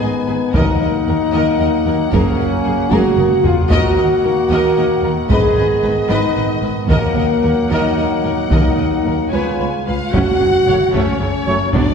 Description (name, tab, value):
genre	cinematic, epic orchestral film score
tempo	75 BPM (dotted quarters)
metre	6/8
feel	straight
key	Eb minor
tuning	A4 = 445 Hz
part	warm symphonic violin section	melody	0.0-11.9 s	C#5 to Ab5	-28 LUFS	left 4 dB	none
part	warm symphonic violin section	second line	0.0-11.9 s	Ab4 to F#5	-26 LUFS	left 3 dB	none
part	warm symphonic viola section	accompaniment	0.0-11.9 s	C#3 to Cb5	-25 LUFS	right 1 dB	none
part	mellow French horn section	sustained chords	0.0-11.9 s	Bb3 to Ab4	-17 LUFS	left 2 dB	none
part	warm trombone section	sustained chords	0.0-11.6 s	Db3 to Eb4	-23 LUFS	right 3 dB	none
part	warm chamber cello section	bass	0.0-11.8 s	Db2 to B2	-23 LUFS	right 2 dB	none
part	warm symphonic double bass section	bass	0.0-11.8 s	Gb1 to Eb2	-23 LUFS	right 3 dB	none
part	taiko ensemble	drums	0.5-11.9 s	none	-19 LUFS	equal	none
part	timpani	percussion	0.5-1.3, 6.9-10.9 s	F#2 to Eb3	-26 LUFS	left 1 dB	none
part	clear trumpet section	stabs	10.7-11.6 s	C#5	-23 LUFS	right 1 dB	none
room	wet scoring stage reverb, RT60 1.5 s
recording	heard from further back in the room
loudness	-13 LUFS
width	side -6 dB against mid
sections	0.0-10.1 A section; 10.1-11.9 B section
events	drum fill 2.9-3.7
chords	0.0 Abm; 0.5 Ebm; 2.1 Gbadd9; 3.7 Ebm; 5.3 Abm; 6.9 Ebm; 9.3 Db7; 10.1 F#m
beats	| 0.54 1.34 | 2.13 2.92 | 3.71 4.51 | 5.30 6.10 | 6.89 7.71 | 8.51 9.32 | 10.14 10.94 | 11.74